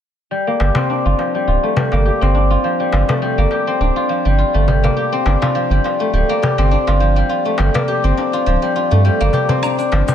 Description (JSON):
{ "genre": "organic downtempo", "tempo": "103 BPM", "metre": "4/4", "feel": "swing 55% on 16ths", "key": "G minor", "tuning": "A4 = 440 Hz", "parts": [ { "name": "guzheng", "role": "arpeggios", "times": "0.3-10.1 s", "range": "F3 to G4", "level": "-16 LUFS", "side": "left 2 dB", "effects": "low-pass filter, ping-pong delay" }, { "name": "round analog bass", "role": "bass", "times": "0.6-10.0 s", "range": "D1 to G2", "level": "-15 LUFS", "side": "right 1 dB", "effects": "none" }, { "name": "darbuka", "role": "percussion", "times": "0.6-10.1 s", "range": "none", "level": "-21 LUFS", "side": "left 2 dB", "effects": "none" }, { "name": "woodblock and shaker", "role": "drums", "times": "9.6-10.1 s", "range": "none", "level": "-25 LUFS", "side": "left 2 dB", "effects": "overdrive, low-pass filter on perc, low-pass filter on room" } ], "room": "light reverb, small room ambience", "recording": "none", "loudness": "-14 LUFS", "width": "side -9 dB against mid", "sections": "0.3-10.1 A section", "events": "filter sweep on analog synth bass 0.3-10.1", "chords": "0.3 Gm7", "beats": "| 0.31 0.90 1.48 2.06 | 2.64 3.23 3.81 4.39 | 4.97 5.55 6.14 6.72 | 7.30 7.88 8.47 9.05 | 9.63" }